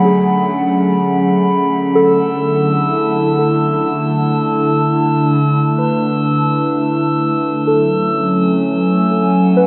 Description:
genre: ambient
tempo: 63 BPM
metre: 3/4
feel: straight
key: D lydian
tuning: A4 = 440 Hz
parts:
  - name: warbly tape-like pad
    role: sustained chords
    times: 0.0-9.7 s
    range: D3 to A5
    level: -17 LUFS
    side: equal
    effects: chorus, built-in reverb
  - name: muted felt-like synth keys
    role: arpeggios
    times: 0.0-9.7 s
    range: G#4 to B4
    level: -21 LUFS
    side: equal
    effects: chorus, delay
  - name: bowed-like drone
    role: drone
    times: 0.0-9.7 s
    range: D3 to A3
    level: -31 LUFS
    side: equal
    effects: none
  - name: glass harmonica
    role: texture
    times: 0.0-9.7 s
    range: B5 to E6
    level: -24 LUFS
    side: equal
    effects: none
room: wet huge ambient reverb, RT60 7.6 s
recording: worn, warbling old tape, cassette tape, warbly pitch drift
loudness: -15 LUFS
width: mono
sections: 0.0-9.7 A section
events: none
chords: 0.0 F#madd9; 2.0 Dsus2; 7.7 F#madd9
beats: 0.07 1.02 | 1.97 2.92 3.88 | 4.83 5.78 6.73 | 7.68 8.64 9.59

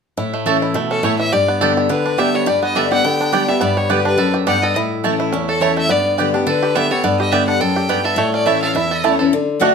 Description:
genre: bluegrass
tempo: 210 BPM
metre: 4/4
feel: swing 55% on 8ths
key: A mixolydian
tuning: A4 = 440 Hz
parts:
  - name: picked steel-string acoustic guitar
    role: accompaniment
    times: 0.2-9.7 s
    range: E2 to G4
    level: -18 LUFS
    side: left 4 dB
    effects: none
  - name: bluegrass banjo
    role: arpeggios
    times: 0.2-9.7 s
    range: E3 to A4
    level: -20 LUFS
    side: right 4 dB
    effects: none
  - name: mandolin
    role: stabs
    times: 0.5-9.7 s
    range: A3 to A5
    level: -21 LUFS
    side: right 9 dB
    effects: none
  - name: clear fiddle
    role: melody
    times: 0.9-9.2 s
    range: A4 to G5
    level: -20 LUFS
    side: left 2 dB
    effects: none
room: moderate studio reverb, RT60 0.7 s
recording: none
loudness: -14 LUFS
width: side -6 dB against mid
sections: 0.2-9.3 A section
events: none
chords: 0.2 A; 1.3 G; 4.8 A; 5.9 G; 8.2 A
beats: | 0.18 0.47 0.75 1.04 | 1.32 1.61 1.90 2.18 | 2.47 2.76 3.04 3.33 | 3.61 3.90 4.18 4.47 | 4.76 5.04 5.33 5.61 | 5.90 6.18 6.47 6.75 | 7.04 7.33 7.61 7.90 | 8.18 8.47 8.75 9.04 | 9.32 9.61

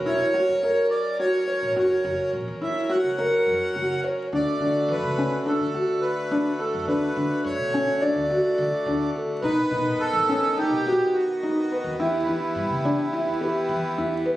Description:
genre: contemporary instrumental, chamber music in an uneven meter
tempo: 211 BPM (eighths)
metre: 9/8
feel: straight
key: unclear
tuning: A4 = 440 Hz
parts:
  - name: hand-pumped harmonium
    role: sustained chords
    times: 0.0-14.4 s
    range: D3 to A#4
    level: -30 LUFS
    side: equal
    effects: none
  - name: upright bass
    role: bass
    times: 0.0-14.2 s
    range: E1 to E3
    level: -35 LUFS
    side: equal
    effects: none
  - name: accordion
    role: melody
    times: 0.1-13.9 s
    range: E4 to F#5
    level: -26 LUFS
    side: right 1 dB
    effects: none
  - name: felt-muted upright piano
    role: arpeggios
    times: 0.1-14.4 s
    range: C#4 to C#5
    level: -24 LUFS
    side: equal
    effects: none
room: light reverb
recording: recorded on a phone in the room, studio reverb, compression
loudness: -21 LUFS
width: side -15 dB against mid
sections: 0.0-14.4 A section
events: none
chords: 0.0 F#; 4.3 D; 9.4 B; 12.0 Em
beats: 0.07 0.35 0.64 0.92 1.21 1.49 | 1.77 2.06 2.34 2.62 2.91 3.19 3.48 3.76 4.04 | 4.33 4.61 4.90 5.18 5.46 5.75 6.03 6.32 6.60 | 6.88 7.17 7.45 7.74 8.02 8.30 8.59 8.87 9.15 | 9.44 9.72 10.01 10.29 10.57 10.86 11.14 11.43 11.71 | 11.99 12.28 12.56 12.85 13.13 13.41 13.70 13.98 14.27

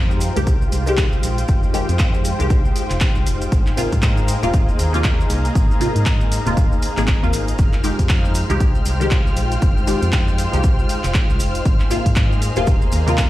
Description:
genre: deep house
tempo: 118 BPM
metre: 4/4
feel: swing 59% on 16ths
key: F minor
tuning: A4 = 438 Hz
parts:
  - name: soft string machine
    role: sustained chords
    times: 0.0-13.3 s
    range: Ab3 to G5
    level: -28 LUFS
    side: equal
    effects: ensemble chorus, sidechain pumping
  - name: organ-like FM bass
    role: bass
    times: 0.0-13.3 s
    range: Eb1 to Ab2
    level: -21 LUFS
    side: equal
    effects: sidechain pumping
  - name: muted studio string section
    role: texture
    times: 0.0-13.3 s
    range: Ab3 to Bb5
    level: -28 LUFS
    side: left 2 dB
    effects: sidechain pumping
  - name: maracas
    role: percussion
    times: 0.1-13.3 s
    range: none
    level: -36 LUFS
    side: right 3 dB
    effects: none
  - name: punchy analog drum machine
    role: drums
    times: 0.2-13.3 s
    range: handclaps, hi-hat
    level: -27 LUFS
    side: equal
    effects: none
  - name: filtered dub chord stab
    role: stabs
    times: 0.4-13.3 s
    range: C3 to Ab4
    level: -24 LUFS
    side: left 1 dB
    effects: phaser, wide subtle chorus, sidechain pumping, tape echo
  - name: electronic kick drum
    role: drums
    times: 0.5-13.3 s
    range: none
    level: -17 LUFS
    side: equal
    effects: none
  - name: warm studio violin section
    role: texture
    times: 7.6-13.3 s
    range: F6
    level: -34 LUFS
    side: equal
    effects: sidechain pumping
room: small room reverb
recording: played on a big sound system in a bare room, stone room reverb, vinyl crackle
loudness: -15 LUFS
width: side -15 dB against mid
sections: 0.0-13.3 A section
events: none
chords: 0.0 Fm9; 3.5 Ab69; 7.6 Fm9; 11.7 Ab69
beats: 0.47 0.98 | 1.49 1.99 2.50 3.01 | 3.52 4.03 4.54 5.04 | 5.55 6.06 6.57 7.08 | 7.59 8.10 8.61 9.11 | 9.62 10.13 10.64 11.15 | 11.65 12.16 12.67 13.18

